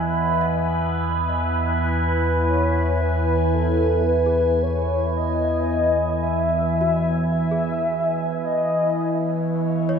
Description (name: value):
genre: ambient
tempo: 55 BPM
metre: 3/4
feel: straight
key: E major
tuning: A4 = 440 Hz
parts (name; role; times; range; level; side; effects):
- warm velvety synth lead; melody; 0.0-9.5 s; A4 to E5; -24 LUFS; left 1 dB; chorus, diffuse ambient delay
- evolving wavetable pad; sustained chords; 0.0-10.0 s; E3 to G#5; -22 LUFS; right 1 dB; phaser, built-in reverb
- small celesta; arpeggios; 0.0-10.0 s; F#4 to G#5; -37 LUFS; left 1 dB; none
- deep rumbling drone; bass; 0.0-10.0 s; E2; -25 LUFS; left 1 dB; built-in reverb
- overtone-sweeping drone; drone; 8.6-10.0 s; E3; -30 LUFS; left 2 dB; chorus, built-in reverb
room: wet lush hall reverb, RT60 3.0 s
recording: none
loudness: -19 LUFS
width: side -6 dB against mid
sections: 0.0-10.0 A section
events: none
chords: 0.0 Emaj7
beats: 0.80 | 1.88 2.96 4.04 | 5.13 6.21 7.31 | 8.42 9.52